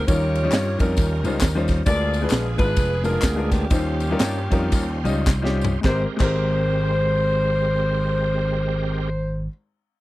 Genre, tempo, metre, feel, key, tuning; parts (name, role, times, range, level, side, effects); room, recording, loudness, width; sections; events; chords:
uptempo gospel; 101-135 BPM; 4/4; swing 61% on 8ths; Ab major; A4 = 440 Hz
mellow saxophone section; melody; 0.0-9.5 s; Bb3 to D5; -25 LUFS; left 1 dB
bright tonewheel organ; sustained chords; 0.0-9.1 s; G3 to C5; -31 LUFS; right 4 dB; slow rotary speaker, overdrive, chorus vibrato
clear baby grand piano; accompaniment; 0.1-9.5 s; Ab1 to Eb5; -27 LUFS; left 3 dB
vintage slap bass; bass; 0.1-9.5 s; F1 to G2; -23 LUFS; equal
crisp fusion drum kit; drums; 0.1-6.3 s; crash cymbal, kick drum, ride cymbal, snare drum, toms; -22 LUFS; equal
tambourine and handclaps; percussion; 0.1-6.3 s; -34 LUFS; left 5 dB
little or no reverb; dry, close 1970s-style studio recording; -19 LUFS; side -17 dB against mid
0.0-5.8 A section; 5.8-10.0 B section
slowing down 1.9-5.8; drum fill 5.3-5.8
0.1 Eb9; 1.9 Bb7b9; 3.7 Eb13; 5.8 Abmaj9